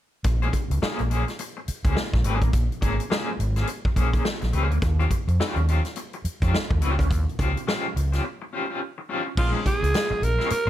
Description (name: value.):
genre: funk.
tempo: 105 BPM.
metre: 4/4.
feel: swing 60% on 16ths.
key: Bb dorian.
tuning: A4 = 440 Hz.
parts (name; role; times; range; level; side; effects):
overdriven fingered electric bass; bass; 0.2-10.7 s; Ab1 to F2; -23 LUFS; equal; none.
swinging big-band drum kit; drums; 0.2-10.7 s; crash cymbal, hi-hat, kick drum, snare drum; -26 LUFS; equal; none.
electric guitar at the edge of break-up; accompaniment; 0.3-10.7 s; Ab3 to Db5; -29 LUFS; left 2 dB; tremolo.
raspy alto saxophone; melody; 9.4-10.7 s; F4 to Bb4; -24 LUFS; right 2 dB; none.
room: light reverb.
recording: none.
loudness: -22 LUFS.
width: side -12 dB against mid.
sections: 0.3-9.4 A section; 9.4-10.7 B section.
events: break 8.2-9.4.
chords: 0.3 Bbm9; 4.8 Eb13; 9.4 Bbm9.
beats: | 0.25 0.82 1.39 1.97 | 2.54 3.11 3.68 4.25 | 4.82 5.39 5.96 6.53 | 7.10 7.67 8.24 8.81 | 9.38 9.94 10.51.